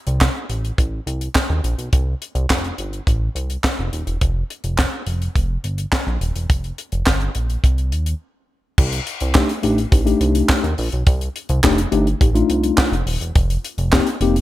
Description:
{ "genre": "early-eighties boogie funk", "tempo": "105 BPM", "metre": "4/4", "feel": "straight", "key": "C dorian", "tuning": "A4 = 440 Hz", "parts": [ { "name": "chorused synth bass", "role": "bass", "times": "0.1-14.4 s", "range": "Eb1 to Eb2", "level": "-20 LUFS", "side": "equal", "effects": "none" }, { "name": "tight funk drum kit", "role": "drums", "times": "0.1-14.4 s", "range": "crash cymbal, handclaps, hi-hat, kick drum, snare drum", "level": "-18 LUFS", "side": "equal", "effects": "gated reverb" }, { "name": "mellow tine electric piano", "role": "accompaniment", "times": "9.3-14.4 s", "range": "A3 to G4", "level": "-19 LUFS", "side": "left 3 dB", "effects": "medium stereo tremolo" } ], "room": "little or no reverb", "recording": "none", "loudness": "-17 LUFS", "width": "side -15 dB against mid", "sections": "0.0-8.8 A section; 8.8-14.4 B section", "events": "break 8.2-8.8", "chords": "0.0 C5; 4.2 Fsus2; 8.8 Cm69; 13.4 F9sus4" }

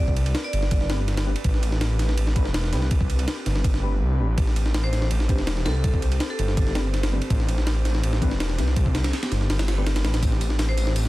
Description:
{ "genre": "drum and bass, jungle", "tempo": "164 BPM", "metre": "4/4", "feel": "straight", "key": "A minor", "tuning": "A4 = 440 Hz", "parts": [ { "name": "vibraphone with hard mallets", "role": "melody", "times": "0.0-1.0, 4.8-6.8, 10.7-10.9 s", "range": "A4 to D5", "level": "-33 LUFS", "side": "equal", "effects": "dub echo" }, { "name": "airy breathy pad", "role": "sustained chords", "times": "0.0-11.1 s", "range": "C4 to C5", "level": "-35 LUFS", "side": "equal", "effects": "chorus" }, { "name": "detuned saw bass", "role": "bass", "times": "0.0-11.1 s", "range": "E1 to C2", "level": "-23 LUFS", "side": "equal", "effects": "none" }, { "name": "breakbeat sampler-style drum kit", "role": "drums", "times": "0.1-11.1 s", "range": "kick drum, ride cymbal, snare drum", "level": "-25 LUFS", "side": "equal", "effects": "studio reverb" }, { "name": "deep mellow chord stab", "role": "stabs", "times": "0.9-10.1 s", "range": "A3 to B4", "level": "-35 LUFS", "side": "left 3 dB", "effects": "chorus, phaser, dub echo" }, { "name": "swell", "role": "sound effects", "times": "9.7-10.2 s", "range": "none", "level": "-44 LUFS", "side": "left 3 dB", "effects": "none" }, { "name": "crunchy breakbeat drum kit", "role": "drums", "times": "10.2-11.1 s", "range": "hi-hat, snare drum, tambourine", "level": "-37 LUFS", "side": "left 3 dB", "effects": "high-pass filter on hats, studio reverb, high-pass filter on snare, high-pass filter on perc, high-pass filter on room" } ], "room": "little or no reverb", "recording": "dense, heavily limited modern master, vinyl crackle", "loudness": "-20 LUFS", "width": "side -18 dB against mid", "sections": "0.0-11.1 A section", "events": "none", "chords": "0.0 Am11" }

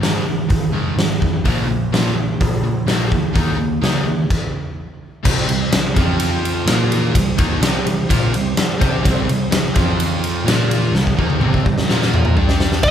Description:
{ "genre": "hard rock", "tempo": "126 BPM", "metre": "4/4", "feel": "straight", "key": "C minor", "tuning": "A4 = 440 Hz", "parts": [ { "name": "overdriven semi-hollow guitar", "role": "riff", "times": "0.0-12.9 s", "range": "Ab2 to C5", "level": "-23 LUFS", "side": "left 5 dB", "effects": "none" }, { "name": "sludgy distorted guitar", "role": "riff", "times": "0.0-12.9 s", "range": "Ab2 to C5", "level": "-24 LUFS", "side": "right 8 dB", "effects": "overdrive" }, { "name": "picked electric bass", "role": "bass", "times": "0.0-12.9 s", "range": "F1 to C3", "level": "-22 LUFS", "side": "equal", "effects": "none" }, { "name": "huge arena drum kit", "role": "drums", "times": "0.0-12.9 s", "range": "crash cymbal, hi-hat, kick drum, ride cymbal, snare drum, toms", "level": "-17 LUFS", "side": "equal", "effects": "none" }, { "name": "breathy flute section", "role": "sustained chords", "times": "5.3-12.8 s", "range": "C4 to G5", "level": "-33 LUFS", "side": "left 1 dB", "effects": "none" }, { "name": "bluesy overdriven lead guitar", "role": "melody", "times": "12.8-12.9 s", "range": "Eb5", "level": "-13 LUFS", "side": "equal", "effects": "distortion" } ], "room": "light reverb", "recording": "band playing live in one room", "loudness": "-15 LUFS", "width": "side -9 dB against mid", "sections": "0.0-5.2 A section; 5.2-12.8 B section", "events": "stop 4.3-5.2; drum fill 10.9-12.8", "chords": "0.0 Ab5; 1.4 Bb5; 3.3 Eb5; 5.2 C5; 6.0 F5; 6.7 Bb5; 7.1 Cm; 9.8 F5; 10.5 Bb5; 10.9 Cm; 11.9 Bb5; 12.4 G5" }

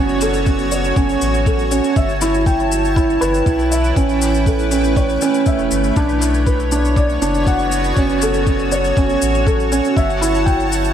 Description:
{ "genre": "piano and strings electronica", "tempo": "120 BPM", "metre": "4/4", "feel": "straight", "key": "E dorian", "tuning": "A4 = 440 Hz", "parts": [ { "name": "granular cloud pad", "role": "sustained chords", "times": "0.0-10.9 s", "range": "A3 to A5", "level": "-21 LUFS", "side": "equal", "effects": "built-in reverb, sidechain pumping" }, { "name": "felt-muted upright piano", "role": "riff", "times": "0.0-10.9 s", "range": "C#4 to G5", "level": "-17 LUFS", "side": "right 2 dB", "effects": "tape echo" }, { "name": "round analog bass", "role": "bass", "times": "0.0-10.9 s", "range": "E1 to B1", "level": "-21 LUFS", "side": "left 1 dB", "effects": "sidechain pumping" }, { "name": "shaker", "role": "drums", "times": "0.1-10.9 s", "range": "none", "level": "-28 LUFS", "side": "left 7 dB", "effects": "overdrive" }, { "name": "electronic kick drum", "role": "drums", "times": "0.5-10.6 s", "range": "none", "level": "-17 LUFS", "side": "left 1 dB", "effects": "none" } ], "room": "light reverb", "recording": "none", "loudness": "-14 LUFS", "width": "side -9 dB against mid", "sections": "0.0-10.9 A section", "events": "none", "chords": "0.0 F#m; 2.0 Em/G; 4.0 A; 6.0 Bm; 8.0 F#m; 10.0 Em/G" }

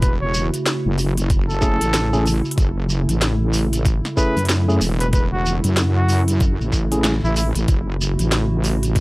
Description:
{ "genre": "glitch hop", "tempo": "94 BPM", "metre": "4/4", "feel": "swing 61% on 16ths", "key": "F# minor", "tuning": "A4 = 440 Hz", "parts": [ { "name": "mellow trumpet", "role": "melody", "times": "0.0-7.5 s", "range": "E4 to C#5", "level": "-26 LUFS", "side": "equal", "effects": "tape echo" }, { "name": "warbly tape-like pad", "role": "sustained chords", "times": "0.0-9.0 s", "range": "C#3 to A4", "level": "-26 LUFS", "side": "right 1 dB", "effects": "chorus, built-in reverb, sidechain pumping" }, { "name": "wobble bass", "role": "bass", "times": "0.0-9.0 s", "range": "E1 to F#2", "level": "-19 LUFS", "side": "equal", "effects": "chorus, tube saturation" }, { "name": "drum and bass drum kit", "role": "drums", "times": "0.0-9.0 s", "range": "hi-hat, snare drum", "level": "-24 LUFS", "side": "equal", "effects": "small room ambience" }, { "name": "electronic kick drum", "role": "drums", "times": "0.0-9.0 s", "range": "none", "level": "-18 LUFS", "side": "equal", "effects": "small room ambience" }, { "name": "shekere", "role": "percussion", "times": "0.0-9.0 s", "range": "none", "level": "-29 LUFS", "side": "right 1 dB", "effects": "none" }, { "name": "tine electric piano", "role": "stabs", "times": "1.6-7.1 s", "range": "A3 to G#4", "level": "-24 LUFS", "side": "equal", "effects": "vintage 12-bit sampler grit, sidechain pumping, tape echo" } ], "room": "little or no reverb", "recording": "dry, gritty hardware recording", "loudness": "-16 LUFS", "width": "side -22 dB against mid", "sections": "0.0-9.0 A section", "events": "none", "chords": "0.0 F#m7" }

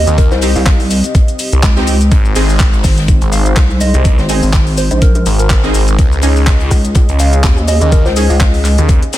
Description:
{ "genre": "bass house", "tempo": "124 BPM", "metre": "4/4", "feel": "swing 55% on 16ths", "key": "unclear", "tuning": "A4 = 439 Hz", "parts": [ { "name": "soft synth bell", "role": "melody", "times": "0.0-8.5 s", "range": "Bb4 to F5", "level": "-21 LUFS", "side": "right 1 dB", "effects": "chorus, phaser, ping-pong delay" }, { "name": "dark analog pad", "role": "sustained chords", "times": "0.0-9.2 s", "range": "Ab3 to Eb5", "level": "-22 LUFS", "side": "left 1 dB", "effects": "chorus, sidechain pumping" }, { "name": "pulsing pluck wobble bass", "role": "bass", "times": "0.0-8.8 s", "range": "Ab1 to Eb2", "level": "-13 LUFS", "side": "equal", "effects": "chorus, overdrive, sidechain pumping" }, { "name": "phased detuned saw bass", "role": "bass", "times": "0.1-9.0 s", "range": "Ab1 to Eb2", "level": "-12 LUFS", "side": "equal", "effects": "phaser, sidechain pumping" }, { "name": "garage drum kit", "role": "drums", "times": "0.1-9.2 s", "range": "cabasa, handclaps, hi-hat", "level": "-20 LUFS", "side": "left 1 dB", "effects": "studio reverb" }, { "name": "electronic kick drum", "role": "drums", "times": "0.2-9.0 s", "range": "none", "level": "-10 LUFS", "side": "equal", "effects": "studio reverb" }, { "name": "open jazz drum kit", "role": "drums", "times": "0.2-9.2 s", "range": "hi-hat, snare drum", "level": "-27 LUFS", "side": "left 3 dB", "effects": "none" }, { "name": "orchestra-hit-like synth stab", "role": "stabs", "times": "0.4-8.3 s", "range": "C4 to Ab4", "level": "-20 LUFS", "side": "right 2 dB", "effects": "built-in reverb, sidechain pumping, ping-pong delay" } ], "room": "little or no reverb", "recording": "dense, heavily limited modern master", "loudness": "-9 LUFS", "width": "side -14 dB against mid", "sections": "0.0-9.2 A section", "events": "none", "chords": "0.0 Cm; 2.1 Ab; 6.0 Dbsus2" }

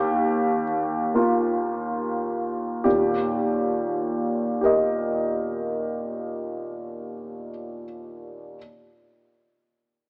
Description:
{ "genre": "neoclassical minimalist piano", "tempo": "34-41 BPM (dotted quarters)", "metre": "6/8", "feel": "rubato", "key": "Eb major", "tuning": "A4 = 442 Hz", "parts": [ { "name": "clear upright piano", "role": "solo", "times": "0.0-8.6 s", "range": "Eb2 to Eb5", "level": "-26 LUFS", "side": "equal", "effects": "none" } ], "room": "moderate concert hall reverb, RT60 2.3 s", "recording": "AM radio sound", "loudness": "-25 LUFS", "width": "mono", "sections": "0.0-2.8 A section; 2.8-6.4 B section", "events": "slowing down 0.0-2.8", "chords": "0.0 Ebadd9; 2.8 Eb" }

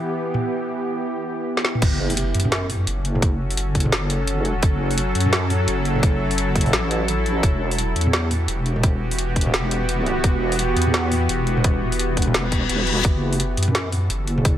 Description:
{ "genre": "half-time drum and bass", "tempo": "171 BPM", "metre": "4/4", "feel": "swing 59% on 16ths, half-time", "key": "F# phrygian", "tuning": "A4 = 440 Hz", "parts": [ { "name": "bowed-like drone", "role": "sustained chords", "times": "0.0-14.6 s", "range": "E3 to A4", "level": "-24 LUFS", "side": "equal", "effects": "built-in reverb, sidechain pumping" }, { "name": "drum and bass drum kit", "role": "drums", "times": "0.3-14.5 s", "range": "crash cymbal, hi-hat, snare drum, toms", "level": "-24 LUFS", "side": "equal", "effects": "none" }, { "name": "deep soft wobble bass", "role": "bass", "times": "1.8-14.6 s", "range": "E1 to F#2", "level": "-22 LUFS", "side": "equal", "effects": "chorus" }, { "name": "electronic kick drum", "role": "drums", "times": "1.8-14.5 s", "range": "none", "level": "-19 LUFS", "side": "equal", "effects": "none" }, { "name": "impact and reverse cymbal", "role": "sound effects", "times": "1.8-3.2, 12.5-13.0 s", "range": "none", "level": "-27 LUFS", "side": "left 4 dB", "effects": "none" } ], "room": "light reverb, digital ambience", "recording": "none", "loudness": "-18 LUFS", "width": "side -11 dB against mid", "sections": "0.0-1.8 A section; 1.8-14.6 B section", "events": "filter sweep on synth drone 0.0-1.8; drum fill 1.6; drop 1.8-14.6; impact 1.8-3.2; reverse cymbal 12.5-13.0", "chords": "0.0 Em; 1.8 F#m; 7.4 Emadd9; 13.0 F#m" }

